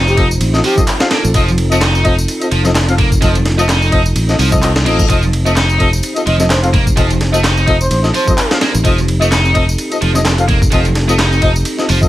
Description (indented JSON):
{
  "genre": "breakbeat, breaks",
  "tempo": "128 BPM",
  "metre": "4/4",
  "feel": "swing 56% on 16ths",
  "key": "unclear",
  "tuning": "A4 = 443 Hz",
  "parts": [
    { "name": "dark analog pad", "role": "sustained chords", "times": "0.0-12.1 s", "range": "C4 to C5", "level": "-22 LUFS", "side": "equal", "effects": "chorus, sidechain pumping" },
    { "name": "high-gain distorted guitar", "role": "riff", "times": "0.0-12.0 s", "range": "F3 to Eb4", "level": "-18 LUFS", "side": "right 1 dB", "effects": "distortion, tape echo" },
    { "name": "fingered electric bass", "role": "bass", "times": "0.0-12.1 s", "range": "F1 to C2", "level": "-14 LUFS", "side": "equal", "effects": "none" },
    { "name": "breathy flute-like synth lead", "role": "melody", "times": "0.1-1.3, 6.3-8.5 s", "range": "G4 to Eb5", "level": "-20 LUFS", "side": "equal", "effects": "chorus, tremolo, small speaker sound, tape echo" },
    { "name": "electronic tambourine and handclaps", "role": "drums", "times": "0.1-12.1 s", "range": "none", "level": "-22 LUFS", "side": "equal", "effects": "overdrive, studio reverb" },
    { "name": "mellow brass ensemble", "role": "stabs", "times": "0.2-12.1 s", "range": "C4 to F5", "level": "-18 LUFS", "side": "left 2 dB", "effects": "vintage 12-bit sampler grit, tape echo" },
    { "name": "breakbeat sampler-style drum kit", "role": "drums", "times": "0.2-12.1 s", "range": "hi-hat, kick drum, ride cymbal, snare drum", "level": "-16 LUFS", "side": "equal", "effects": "studio reverb" },
    { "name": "reverse cymbal", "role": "sound effects", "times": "4.6-5.1 s", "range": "none", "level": "-25 LUFS", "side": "left 5 dB", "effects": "none" }
  ],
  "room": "light reverb",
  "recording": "vinyl crackle",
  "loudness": "-10 LUFS",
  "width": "side -15 dB against mid",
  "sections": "0.0-12.1 A section",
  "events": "reverse cymbal 4.6-5.1",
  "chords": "0.0 F7",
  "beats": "0.41 0.88 | 1.35 1.81 2.28 2.75 | 3.22 3.69 4.16 4.63 | 5.10 5.57 6.03 6.50 | 6.97 7.44 7.91 8.38 | 8.85 9.31 9.78 10.25 | 10.72 11.19 11.66"
}